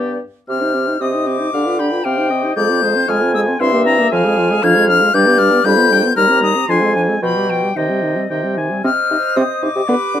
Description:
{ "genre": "quick classical-period movement for wind quintet", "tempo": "116 BPM", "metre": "2/4", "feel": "straight", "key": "C minor", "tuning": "A4 = 440 Hz", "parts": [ { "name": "silver concert flute", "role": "melody", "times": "0.0-10.2 s", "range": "D5 to Ab6", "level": "-17 LUFS", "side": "left 5 dB", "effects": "none" }, { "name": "warm oboe", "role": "second line", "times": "0.0-10.2 s", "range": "G4 to B5", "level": "-21 LUFS", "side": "left 4 dB", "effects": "none" }, { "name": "mellow French horn", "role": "accompaniment", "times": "0.0-10.2 s", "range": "Eb3 to G4", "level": "-20 LUFS", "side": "equal", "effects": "none" }, { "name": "warm bassoon", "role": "bass", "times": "0.0-10.2 s", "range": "Eb2 to D3", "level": "-18 LUFS", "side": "right 2 dB", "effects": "none" }, { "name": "warm clarinet", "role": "accompaniment", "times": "0.5-10.2 s", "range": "C4 to C5", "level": "-25 LUFS", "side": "right 6 dB", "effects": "none" } ], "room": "light reverb", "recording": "close, detailed microphones", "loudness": "-13 LUFS", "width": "side -10 dB against mid", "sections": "0.5-8.8 A section; 8.8-10.2 B section", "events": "none", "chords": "0.5 Cm; 1.5 G7/D; 2.0 Cm; 2.6 Fm; 3.6 C7/G; 4.1 Fm; 4.6 Ddim/F; 5.1 G; 5.7 G7/F; 6.2 Cm/Eb; 6.7 Dm7b5/F; 7.2 G7/B; 7.8 Cm" }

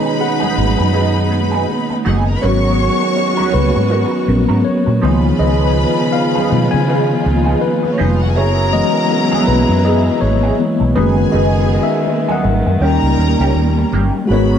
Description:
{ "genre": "lush 1970s-style soul", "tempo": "81 BPM", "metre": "4/4", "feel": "swing 58% on 16ths", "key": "G# minor", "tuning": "A4 = 440 Hz", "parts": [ { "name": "warm studio string section", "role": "second line", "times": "0.0-14.6 s", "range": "B3 to C#6", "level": "-22 LUFS", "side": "equal", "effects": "none" }, { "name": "tine electric piano", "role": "accompaniment", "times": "0.0-14.6 s", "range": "D#3 to G#5", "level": "-17 LUFS", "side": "left 4 dB", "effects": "medium stereo tremolo" }, { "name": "warm studio string section", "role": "sustained chords", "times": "0.0-14.6 s", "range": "C#3 to G#4", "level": "-23 LUFS", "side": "left 1 dB", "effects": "none" }, { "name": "electric guitar through a small old amp", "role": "riff", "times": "0.0-14.6 s", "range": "D#3 to A#4", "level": "-24 LUFS", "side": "right 4 dB", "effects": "wah, analog chorus" }, { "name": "warm trombone section", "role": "stabs", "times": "0.0-14.6 s", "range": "A#2 to G#4", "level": "-22 LUFS", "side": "right 14 dB", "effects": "none" }, { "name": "congas", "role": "percussion", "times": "0.2-14.1 s", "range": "none", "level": "-23 LUFS", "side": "right 6 dB", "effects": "none" }, { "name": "vintage muted fingered electric bass", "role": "bass", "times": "0.6-14.6 s", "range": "E#1 to C#3", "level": "-16 LUFS", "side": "equal", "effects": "none" } ], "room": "light reverb, studio ambience", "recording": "dark, warm production", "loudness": "-12 LUFS", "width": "side -8 dB against mid", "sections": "0.0-14.3 A section", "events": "tine electric piano solo 0.0-14.3", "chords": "0.0 B6; 2.4 G#m11; 5.0 C#9; 8.4 F#9sus4; 12.8 D#7" }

